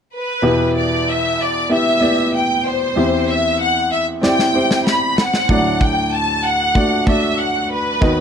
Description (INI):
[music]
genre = piano-driven pop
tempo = 95 BPM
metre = 4/4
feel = straight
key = E minor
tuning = A4 = 440 Hz
[part]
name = rich studio violin section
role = melody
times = 0.1-8.2 s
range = B4 to B5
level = -17 LUFS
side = left 1 dB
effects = none
[part]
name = clear grand piano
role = accompaniment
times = 0.4-8.2 s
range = D2 to E5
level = -18 LUFS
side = equal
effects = none
[part]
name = modern studio drum kit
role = drums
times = 4.2-8.2 s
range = kick drum, snare drum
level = -18 LUFS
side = equal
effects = none
[sound]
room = small room ambience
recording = dry, close 1970s-style studio recording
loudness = -14 LUFS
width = side -7 dB against mid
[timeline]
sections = 0.4-8.2 A section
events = drum fill 4.2-5.5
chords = 0.4 Em; 3.0 C/E; 5.5 D